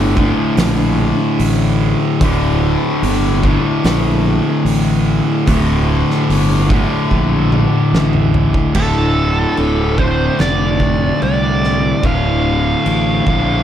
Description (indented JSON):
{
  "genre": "stoner and doom metal",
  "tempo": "73 BPM",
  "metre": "4/4",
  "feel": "straight",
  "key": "D minor",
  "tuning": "A4 = 438 Hz",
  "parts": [
    { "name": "fuzz guitar", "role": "riff", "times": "0.0-13.6 s", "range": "D2 to D3", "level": "-15 LUFS", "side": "left 1 dB", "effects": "distortion" },
    { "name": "fuzz fingered electric bass", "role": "bass", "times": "0.0-13.6 s", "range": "D1 to C2", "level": "-17 LUFS", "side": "equal", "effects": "overdrive" },
    { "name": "oversized low-tuned drum kit", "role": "drums", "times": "0.2-13.5 s", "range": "crash cymbal, hi-hat, kick drum, snare drum, toms", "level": "-20 LUFS", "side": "right 1 dB", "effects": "none" },
    { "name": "fuzz lead guitar", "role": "melody", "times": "8.8-13.6 s", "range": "A4 to F5", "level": "-19 LUFS", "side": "right 2 dB", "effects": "wah, distortion, slapback echo" }
  ],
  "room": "little or no reverb",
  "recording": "none",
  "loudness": "-12 LUFS",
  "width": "side -10 dB against mid",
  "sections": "0.0-8.8 A section; 8.8-13.6 B section",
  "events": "drum fill 7.1-8.8",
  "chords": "0.0 D5; 8.8 Dm",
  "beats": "0.58 1.39 | 2.21 3.02 3.84 4.66 | 5.48 6.29 7.11 7.93 | 8.75 9.57 10.39 11.21 | 12.04 12.86"
}